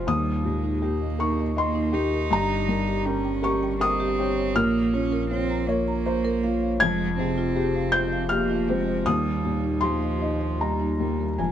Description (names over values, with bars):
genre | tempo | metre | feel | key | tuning
neoclassical piano and strings | 80 BPM | 3/4 | rubato | unclear | A4 = 438 Hz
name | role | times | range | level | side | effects
warm cello | second line | 0.0-11.5 s | F3 to Eb4 | -28 LUFS | right 7 dB | none
felt-muted upright piano | accompaniment | 0.0-11.5 s | Eb2 to Ab6 | -25 LUFS | left 3 dB | none
saturated sub bass | bass | 0.0-11.5 s | F1 to Eb2 | -31 LUFS | equal | none
marimba with soft mallets | arpeggios | 0.1-11.5 s | Eb4 to Bb5 | -30 LUFS | right 1 dB | tape echo
room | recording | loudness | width
light reverb | close, detailed microphones | -22 LUFS | side -10 dB against mid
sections
0.0-11.5 A section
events
none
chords
0.1 Eb; 2.3 Gdim; 4.6 Bbmadd9; 6.8 Fmadd9; 9.1 Eb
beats
| 0.08 0.83 1.58 | 2.32 3.07 3.81 | 4.56 5.31 6.05 | 6.81 7.56 8.31 | 9.06 9.82 10.60 | 11.39